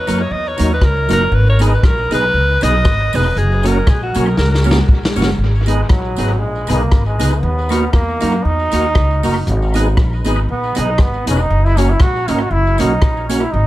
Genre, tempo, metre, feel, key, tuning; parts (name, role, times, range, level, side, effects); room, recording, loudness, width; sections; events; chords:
ska; 118 BPM; 4/4; swing 56% on 8ths; G# minor; A4 = 439 Hz
bright alto saxophone; melody; 0.0-4.8 s; F#4 to D#5; -19 LUFS; equal; dub echo
upright bass; bass; 0.0-13.7 s; E1 to F#2; -16 LUFS; equal
mellow electric guitar; accompaniment; 0.1-13.4 s; F#3 to G#4; -22 LUFS; right 4 dB
percussive tonewheel organ; stabs; 0.1-13.4 s; C#4 to B4; -24 LUFS; left 2 dB; overdrive, chorus vibrato, slow rotary speaker, dub echo
vintage drum kit; drums; 0.1-13.4 s; hi-hat, kick drum, rim click, snare drum; -16 LUFS; equal; dub echo
tambourine; percussion; 0.1-13.4 s; -37 LUFS; right 7 dB; dub echo
brilliant trombone; melody; 5.7-13.7 s; F#3 to F#4; -19 LUFS; right 1 dB
light reverb; -12 LUFS; side -16 dB against mid
0.0-5.4 A section; 5.4-13.7 A section
alto saxophone solo 0.0-5.4; drum fill 4.4-5.4; trombone solo 5.4-13.7
0.0 D#m; 1.3 G#m; 3.4 F#; 5.4 G#m; 7.4 D#m; 9.5 G#m; 11.5 F#